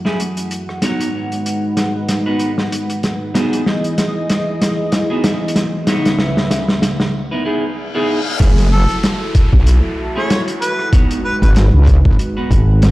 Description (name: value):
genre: glitch hop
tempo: 95 BPM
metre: 4/4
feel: swing 56% on 16ths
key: F# dorian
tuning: A4 = 440 Hz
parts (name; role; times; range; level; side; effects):
- dark analog pad; sustained chords; 0.0-12.9 s; C#3 to F#5; -22 LUFS; equal; chorus, sidechain pumping
- clean electric guitar; stabs; 0.0-12.6 s; A3 to C#5; -22 LUFS; equal; sidechain pumping, low-pass filter, dub echo
- warm soul drum kit; drums; 0.1-12.9 s; hi-hat, rim click, snare drum; -19 LUFS; equal; none
- reverse cymbal and downlifter; sound effects; 7.7-12.9 s; none; -28 LUFS; left 3 dB; none
- wobble bass; bass; 8.4-12.2 s; F#1 to C#2; -10 LUFS; equal; chorus, tube saturation
- electronic kick drum; drums; 8.4-12.7 s; none; -12 LUFS; equal; overdrive
- mellow harmonica; melody; 8.7-11.5 s; A4 to C#5; -23 LUFS; equal; dub echo
- modern bright fingered electric bass; bass; 12.5-12.9 s; G#1; -11 LUFS; equal; tube saturation
room: moderate plate reverb, RT60 2.1 s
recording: played on a big sound system in a bare room, large studio reverb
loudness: -13 LUFS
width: side -18 dB against mid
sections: 0.0-8.4 A section; 8.4-12.9 B section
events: build-up 0.0-8.4; drum fill 0.0-7.1; break 7.1-8.4; reverse cymbal 7.7-8.4; drop 8.4-12.9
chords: 0.0 F#m7; 0.8 G#m7; 3.4 Emaj7; 5.9 C#m7; 8.4 F#m7; 10.9 G#m7